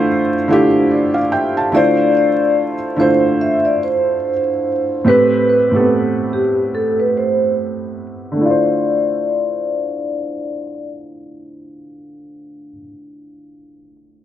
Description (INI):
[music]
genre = hip hop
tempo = 72 BPM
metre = 4/4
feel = swing 57% on 16ths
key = D minor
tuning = A4 = 440 Hz
[part]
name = felt-muted upright piano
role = accompaniment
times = 0.0-14.2 s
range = A2 to A5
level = -16 LUFS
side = right 1 dB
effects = cassette tape, plate reverb
[part]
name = vibraphone with soft mallets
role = melody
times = 1.7-10.9 s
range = G4 to E5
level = -16 LUFS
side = left 1 dB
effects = none
[sound]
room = moderate small room reverb, RT60 0.6 s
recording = vinyl crackle, low-pass filter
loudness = -13 LUFS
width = side -11 dB against mid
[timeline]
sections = 0.0-1.7 A section; 1.7-8.4 B section; 8.4-11.7 C section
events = filter sweep 1.7-8.4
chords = 0.0 Dm9; 5.1 Am9; 8.4 Dm9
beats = 0.07 0.90 | 1.73 2.57 3.40 4.23 | 5.07 5.90 6.73 7.57 | 8.40 9.23 10.07 10.90